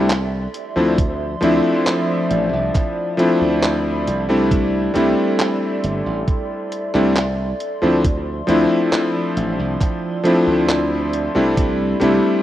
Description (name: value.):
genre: vaporwave.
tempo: 68 BPM.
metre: 4/4.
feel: straight.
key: unclear.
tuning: A4 = 440 Hz.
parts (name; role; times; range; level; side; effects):
bright electric grand piano; accompaniment; 0.0-12.4 s; F3 to E4; -17 LUFS; left 1 dB; wide subtle chorus, vintage 12-bit sampler grit, tape echo.
warbly tape-like pad; sustained chords; 0.2-12.4 s; F3 to C6; -25 LUFS; equal; chorus, built-in reverb, phaser.
glassy slap bass; bass; 0.0-12.2 s; G1 to D2; -24 LUFS; right 1 dB; none.
detuned 8-bit digital drum machine; drums; 0.1-12.2 s; handclaps, hi-hat; -24 LUFS; right 1 dB; small room ambience.
electronic kick drum; drums; 1.0-11.8 s; none; -19 LUFS; right 1 dB; small room ambience.
room: light reverb.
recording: rough home demo mix, cassette tape.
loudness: -16 LUFS.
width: side -13 dB against mid.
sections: 0.0-12.4 A section.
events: none.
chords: 0.0 C69; 0.5 Dm9; 4.5 C69; 7.6 Dm9; 11.6 C69.